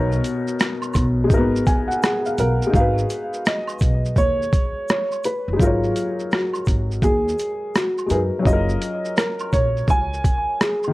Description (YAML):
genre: lo-fi hip hop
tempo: 84 BPM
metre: 4/4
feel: swing 66% on 16ths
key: G# dorian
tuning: A4 = 440 Hz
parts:
  - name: felt-muted upright piano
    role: accompaniment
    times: 0.0-10.9 s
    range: B2 to G#5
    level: -24 LUFS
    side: left 2 dB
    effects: cassette tape, low-pass filter
  - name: upright bass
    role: bass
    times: 0.0-10.2 s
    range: F#1 to F#2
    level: -23 LUFS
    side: equal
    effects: none
  - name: boom bap sampler-style drum kit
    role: drums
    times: 0.1-10.9 s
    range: hi-hat, kick drum, rim click, shaker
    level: -21 LUFS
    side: equal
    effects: none
  - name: tube shaker and woodblock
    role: percussion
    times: 0.2-10.9 s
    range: none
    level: -35 LUFS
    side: right 3 dB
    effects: none
  - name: dark upright piano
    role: melody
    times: 2.0-10.9 s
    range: E#4 to G#5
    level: -23 LUFS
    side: equal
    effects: low-pass filter, analog delay
room: light reverb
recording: cassette tape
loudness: -18 LUFS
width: side -19 dB against mid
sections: 0.0-2.7 A section; 2.7-10.9 B section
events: felt piano fill 1.3-2.7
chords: 0.0 Bmaj9; 1.3 G#m7; 8.4 F#maj7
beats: 0.59 1.31 2.02 | 2.74 3.45 4.16 4.88 | 5.59 6.31 7.02 7.74 | 8.45 9.16 9.88 10.59